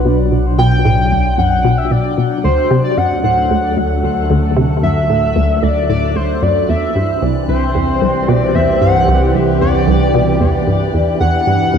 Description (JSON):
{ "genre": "ambient, sequencer-driven space music", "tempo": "113 BPM", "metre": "4/4", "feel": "straight", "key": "unclear", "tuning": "A4 = 440 Hz", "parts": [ { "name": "pulse-width lead", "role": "melody", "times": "0.0-11.8 s", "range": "B4 to G5", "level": "-17 LUFS", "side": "left 1 dB", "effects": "chorus, ping-pong delay" }, { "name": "phased analog pad", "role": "sustained chords", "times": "0.0-11.8 s", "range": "B2 to D5", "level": "-18 LUFS", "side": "right 1 dB", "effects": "phaser, chorus" }, { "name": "analog drone", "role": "bass", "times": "0.0-11.8 s", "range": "B1 to E2", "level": "-19 LUFS", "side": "equal", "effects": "chorus" }, { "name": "bubbling stepped-filter texture", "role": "texture", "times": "0.0-11.8 s", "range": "F#6", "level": "-39 LUFS", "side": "equal", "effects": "chorus, built-in reverb" }, { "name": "resonant blip pluck", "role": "riff", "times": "0.1-11.8 s", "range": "C2 to C3", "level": "-16 LUFS", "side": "equal", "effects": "chorus, ping-pong delay" } ], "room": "wet spring reverb, RT60 2.3 s", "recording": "echo-heavy mix", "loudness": "-12 LUFS", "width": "side -7 dB against mid", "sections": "0.0-11.8 A section", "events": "fade-in on synth texture 0.0-11.8", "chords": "0.0 Bm; 2.4 D; 6.7 Cadd9; 10.9 Em7" }